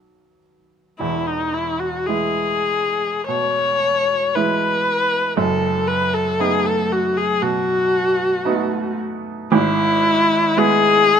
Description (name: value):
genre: classical, romantic duo for viola and grand piano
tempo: 48-61 BPM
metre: 4/4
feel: rubato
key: E major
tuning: A4 = 440 Hz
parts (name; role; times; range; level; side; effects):
- bright baby grand piano; accompaniment; 0.0-11.2 s; E1 to B5; -22 LUFS; right 4 dB; none
- warm viola; melody; 1.0-11.2 s; D#4 to C#5; -18 LUFS; left 3 dB; none
room: light reverb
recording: close, detailed microphones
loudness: -16 LUFS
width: side -8 dB against mid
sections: 0.0-1.0 A section; 1.0-11.2 B section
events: none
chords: 0.0 B; 1.0 E; 5.4 B7/F#; 9.5 E/G#